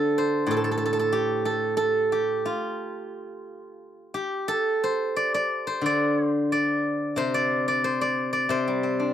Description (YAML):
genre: chinese traditional, Chinese solo plucked strings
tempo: 90 BPM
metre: 4/4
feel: rubato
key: D yu mode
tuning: A4 = 438 Hz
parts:
  - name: steel-string zither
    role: solo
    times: 0.0-9.1 s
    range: A2 to D5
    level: -23 LUFS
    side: equal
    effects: none
room: light reverb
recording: dry, close 1970s-style studio recording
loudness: -22 LUFS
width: side -10 dB against mid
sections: 0.0-9.1 A section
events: none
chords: none